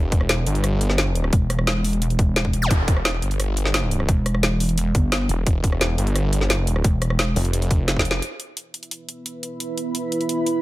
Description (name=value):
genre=dark technical drum and bass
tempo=174 BPM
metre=4/4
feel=straight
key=E phrygian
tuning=A4 = 440 Hz
part: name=snarling distorted saw bass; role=bass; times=0.0-8.2 s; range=E1 to G1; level=-21 LUFS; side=equal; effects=tube saturation, sidechain pumping
part: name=drum and bass drum kit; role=drums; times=0.1-10.5 s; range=hi-hat, rim click, snare drum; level=-24 LUFS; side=equal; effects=overdrive
part: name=electronic kick drum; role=drums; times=0.1-8.0 s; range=none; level=-19 LUFS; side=equal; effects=overdrive
part: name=pulsing pluck wobble bass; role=bass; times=1.3-7.3 s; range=E1 to G1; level=-21 LUFS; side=equal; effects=chorus
part: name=zap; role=sound effects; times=2.6-2.7 s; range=none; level=-26 LUFS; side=equal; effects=none
part: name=dark analog pad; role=sustained chords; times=9.1-10.6 s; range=B3 to B4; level=-29 LUFS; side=right 2 dB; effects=chorus, phaser, sidechain pumping
part: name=granular cloud pad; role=texture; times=9.5-10.6 s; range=E4 to B5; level=-26 LUFS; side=right 2 dB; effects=built-in reverb, sidechain pumping
room=digital ambience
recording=none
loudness=-19 LUFS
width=side -17 dB against mid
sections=0.0-8.2 A section; 8.2-10.6 B section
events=drop 0.0-8.2; drum fill 7.9-8.2; band accent 8.1; filter sweep on analog synth pad 8.2-10.6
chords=0.0 Em; 8.2 E5